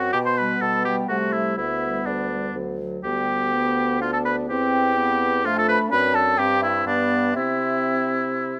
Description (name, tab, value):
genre	quick classical-period movement for wind quintet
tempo	124 BPM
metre	3/4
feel	straight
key	G major, C major from 3.0 s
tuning	A4 = 441 Hz
part	mellow silver concert flute	melody	0.0-8.6 s	D5 to C6	-30 LUFS	equal	none
part	warm oboe	second line	0.0-8.6 s	D4 to C5	-25 LUFS	equal	none
part	clear French horn	accompaniment	0.0-8.6 s	G3 to D4	-31 LUFS	equal	none
part	warm clarinet	accompaniment	0.0-8.6 s	F#3 to F#4	-33 LUFS	equal	none
part	mellow bassoon	bass	0.0-8.6 s	D2 to C3	-30 LUFS	equal	none
room	light reverb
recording	none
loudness	-22 LUFS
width	mono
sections	0.0-8.6 A section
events	none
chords	0.1 G/B; 1.1 Am7/C; 1.6 G/D; 2.6 D; 3.0 G/D; 4.5 C/E; 5.5 Dm/F; 5.9 D7/F#; 6.4 C/G; 6.9 G; 7.4 C